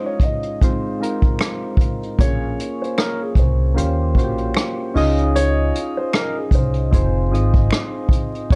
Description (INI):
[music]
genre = lo-fi hip hop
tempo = 76 BPM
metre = 4/4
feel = swing 55% on 16ths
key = unclear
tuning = A4 = 440 Hz
[part]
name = dark upright piano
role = melody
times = 0.0-8.6 s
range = Ab4 to Eb5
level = -29 LUFS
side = equal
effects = low-pass filter
[part]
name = soft electric-piano-like synth keys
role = accompaniment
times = 0.0-8.6 s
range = Ab3 to Eb5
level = -26 LUFS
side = equal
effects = chorus, low-pass filter
[part]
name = vintage brush drum kit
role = drums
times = 0.2-8.6 s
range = hi-hat, kick drum, rim click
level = -21 LUFS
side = equal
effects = none
[part]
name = finger snap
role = percussion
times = 1.4-7.9 s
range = none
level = -34 LUFS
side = equal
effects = none
[part]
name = upright bass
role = bass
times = 2.2-8.6 s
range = F1 to Eb2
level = -22 LUFS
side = equal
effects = none
[sound]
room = little or no reverb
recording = cassette tape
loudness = -19 LUFS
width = mono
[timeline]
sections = 0.0-8.6 A section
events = break 0.0-2.2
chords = 0.0 Dbadd9; 0.6 Fm7; 2.2 Bbm9; 3.8 Eb13; 4.9 Dbmaj9; 6.9 Fm7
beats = 0.61 1.40 | 2.19 2.98 3.76 4.55 | 5.34 6.13 6.92 7.71 | 8.50